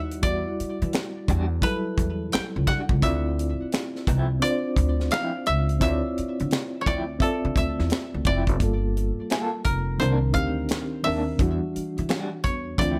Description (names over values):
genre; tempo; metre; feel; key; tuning
R&B, neo-soul; 86 BPM; 4/4; swing 62% on 16ths; unclear; A4 = 440 Hz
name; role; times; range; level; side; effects
koto; melody; 0.0-13.0 s; A4 to G5; -31 LUFS; equal; none
reed electric piano; accompaniment; 0.0-13.0 s; Eb3 to E5; -32 LUFS; equal; fast tremolo
upright bass; bass; 0.0-13.0 s; F1 to E3; -28 LUFS; equal; none
tight funk drum kit; drums; 0.1-13.0 s; finger snaps, hi-hat, kick drum, snare drum; -28 LUFS; equal; none
electric guitar through a small old amp; second line; 0.9-13.0 s; Eb3 to A4; -33 LUFS; equal; tremolo
room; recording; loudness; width
light reverb; none; -25 LUFS; mono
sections
0.0-8.6 A section; 8.6-13.0 B section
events
none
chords
0.0 Em9; 3.0 Dm9; 8.6 Gm9; 10.0 Cm9; 11.4 Em9